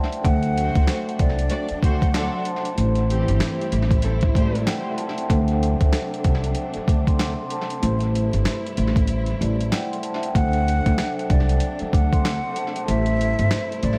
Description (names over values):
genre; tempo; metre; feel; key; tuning
hip hop, boom-bap hip-hop; 95 BPM; 4/4; swing 61% on 16ths; unclear; A4 = 440 Hz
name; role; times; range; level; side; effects
vibraphone with soft mallets; accompaniment; 0.0-14.0 s; A3 to D6; -30 LUFS; equal; cassette tape, high-pass filter, low-pass filter, analog delay
dusty soul sampler-style drum kit; drums; 0.1-14.0 s; handclaps, hi-hat, kick drum, snare drum; -25 LUFS; equal; overdrive, vintage 12-bit sampler grit, analog delay
breathy concert flute; melody; 0.2-2.7, 10.3-14.0 s; D5 to F#5; -31 LUFS; equal; high-pass filter, low-pass filter, analog delay
warm studio string section; sustained chords; 0.2-14.0 s; C3 to E4; -36 LUFS; equal; high-pass filter, low-pass filter
upright bass; bass; 0.2-14.0 s; G1 to D2; -24 LUFS; equal; none
warm studio string section; stabs; 0.6-4.6 s; E3 to D5; -33 LUFS; equal; high-pass filter, low-pass filter, analog delay
room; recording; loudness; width
studio reverb; echo-heavy mix, vinyl crackle; -22 LUFS; mono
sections
0.2-10.3 A section; 10.3-14.0 A section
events
break 9.1-10.3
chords
0.2 D7; 2.8 Am7; 5.3 D7; 7.8 Am7; 10.3 D7; 12.9 Am7